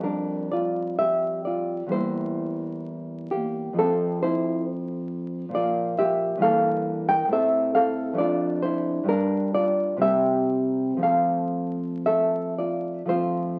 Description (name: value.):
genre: romantic piece for solo classical guitar.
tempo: 57-70 BPM.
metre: 2/4.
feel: rubato.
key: F major.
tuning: A4 = 439 Hz.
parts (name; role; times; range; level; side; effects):
nylon-string guitar; solo; 0.0-13.6 s; E2 to G5; -25 LUFS; equal; none.
room: wet large studio reverb, RT60 0.8 s.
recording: very old 78 rpm record, vinyl crackle.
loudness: -25 LUFS.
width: mono.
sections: 0.0-13.1 A section.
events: none.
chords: 0.0 G5/F; 1.9 C7/E; 3.8 F; 5.5 Bb6; 6.4 Edim/G; 7.3 Am; 8.2 Dm/F; 9.1 Gm; 10.0 C; 11.0 F.